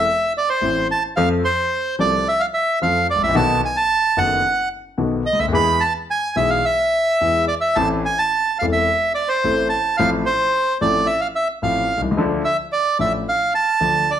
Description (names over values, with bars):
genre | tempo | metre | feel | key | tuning
tango | 109 BPM | 4/4 | rubato | A harmonic minor | A4 = 439 Hz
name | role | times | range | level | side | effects
bandoneon | melody | 0.0-14.2 s | C5 to B5 | -17 LUFS | right 2 dB | plate reverb
clear concert grand piano | accompaniment | 0.0-14.0 s | E1 to A4 | -21 LUFS | left 3 dB | none
room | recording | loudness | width
moderate large studio reverb, RT60 0.9 s | none | -16 LUFS | side -10 dB against mid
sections
0.0-14.2 A section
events
none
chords
0.0 Am; 1.2 F; 3.4 B7; 5.5 E; 7.8 Am; 10.0 F/A; 12.2 Dm